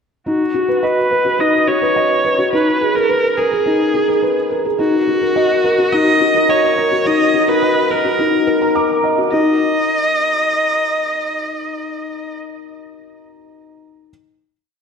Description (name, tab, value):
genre	electronica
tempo	106 BPM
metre	4/4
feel	straight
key	Eb minor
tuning	A4 = 440 Hz
part	rich viola	melody	0.3-12.3 s	F#4 to Eb5	-17 LUFS	right 1 dB	low-pass filter
part	felt-muted upright piano	riff	0.3-14.1 s	D#4 to D6	-16 LUFS	left 1 dB	none
room	wet concert hall reverb, RT60 2.0 s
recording	none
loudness	-13 LUFS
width	side -6 dB against mid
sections	0.3-9.3 build; 9.3-11.6 final chord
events	build-up 0.3-9.3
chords	0.3 B; 2.5 Abmadd9; 4.8 Ebm; 9.3 N.C.